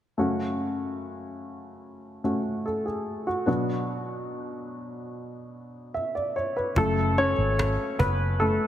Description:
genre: pop ballad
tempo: 73 BPM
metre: 4/4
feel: straight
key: F# minor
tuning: A4 = 435 Hz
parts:
  - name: warm upright piano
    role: accompaniment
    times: 0.2-8.7 s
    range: F#2 to E5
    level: -26 LUFS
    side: equal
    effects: none
  - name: vintage muted fingered electric bass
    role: bass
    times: 6.8-8.6 s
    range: F#1 to G#1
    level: -26 LUFS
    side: equal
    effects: none
  - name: cajon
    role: drums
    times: 6.8-8.5 s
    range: none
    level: -29 LUFS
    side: equal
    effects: none
room: light reverb, small room ambience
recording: none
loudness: -25 LUFS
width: side -11 dB against mid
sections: 0.2-6.8 A section; 6.8-8.7 B section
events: upright piano solo 6.8-8.7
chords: 0.2 F#m; 3.5 Bm; 6.8 F#m

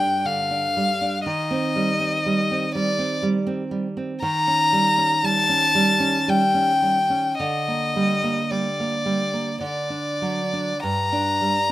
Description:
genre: romantic duo for violin and classical guitar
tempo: 46-62 BPM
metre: 3/4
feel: rubato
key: G minor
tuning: A4 = 440 Hz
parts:
  - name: rich violin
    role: melody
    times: 0.0-11.7 s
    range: D5 to Bb5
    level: -21 LUFS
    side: left 2 dB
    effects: none
  - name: nylon-string guitar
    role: accompaniment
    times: 0.0-11.7 s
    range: G2 to D4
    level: -24 LUFS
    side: right 2 dB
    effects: none
room: small room ambience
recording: rough home demo mix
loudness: -19 LUFS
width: side -15 dB against mid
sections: 0.0-11.7 A section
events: none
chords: 0.0 G5; 1.3 Cm/Eb; 4.2 Eb7; 7.4 Gm/D; 9.6 D; 10.8 Gm

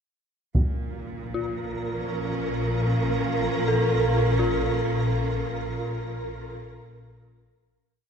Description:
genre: dark ambient drone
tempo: free time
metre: none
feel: none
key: unclear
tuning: A4 = 440 Hz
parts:
  - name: bright symphonic cello section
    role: sustained chords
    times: 0.5-8.1 s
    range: Bb2 to F4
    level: -31 LUFS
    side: right 2 dB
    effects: shimmer reverb
  - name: solo taiko drums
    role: percussion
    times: 0.5-0.7 s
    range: none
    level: -29 LUFS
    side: right 1 dB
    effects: low-pass filter on perc
  - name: flickering grainy texture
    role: texture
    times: 1.5-8.1 s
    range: Bb4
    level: -30 LUFS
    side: right 1 dB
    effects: built-in reverb, shimmer reverb
  - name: swarming drone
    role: drone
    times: 1.3-8.1 s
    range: Bb1 to Bb2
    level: -27 LUFS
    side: equal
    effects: built-in reverb
  - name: dark detuned synth bell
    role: arpeggios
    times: 1.3-8.1 s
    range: F4 to A4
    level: -31 LUFS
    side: left 2 dB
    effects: chorus, ping-pong delay, shimmer reverb
room: wet huge ambient reverb, RT60 8.9 s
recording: none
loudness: -23 LUFS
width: side -7 dB against mid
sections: 0.6-8.1 A section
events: fade-out on cello section 0.6-8.1; fade-out 4.3-8.1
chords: 0.6 Bbm

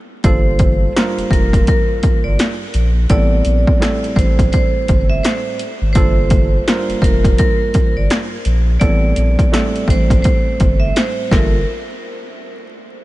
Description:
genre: hip hop, boom-bap hip-hop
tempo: 84 BPM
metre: 4/4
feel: swing 61% on 16ths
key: G minor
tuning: A4 = 437 Hz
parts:
  - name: vibraphone with medium hard mallets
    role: melody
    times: 0.2-11.6 s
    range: Bb4 to E5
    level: -22 LUFS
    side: right 1 dB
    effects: high-pass filter, low-pass filter, tape echo
  - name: mellow tine electric piano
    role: accompaniment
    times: 0.2-11.6 s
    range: G2 to Bb4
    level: -23 LUFS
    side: right 3 dB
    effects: cassette tape, high-pass filter, low-pass filter
  - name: round analog bass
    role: bass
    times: 0.2-11.6 s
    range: F1 to Bb1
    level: -16 LUFS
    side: equal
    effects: none
  - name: punchy analog drum machine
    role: drums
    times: 0.2-11.5 s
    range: hi-hat, kick drum, snare drum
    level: -15 LUFS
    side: equal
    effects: none
room: light reverb, digital ambience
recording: vinyl crackle, nothing above 10.5 kHz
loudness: -12 LUFS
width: side -18 dB against mid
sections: 0.2-11.7 A section; 11.7-13.0 B section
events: break 0.0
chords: 0.2 Gm9; 3.1 Am9; 6.0 Gm9; 8.8 Am9; 11.3 Gm9; 11.7 N.C.

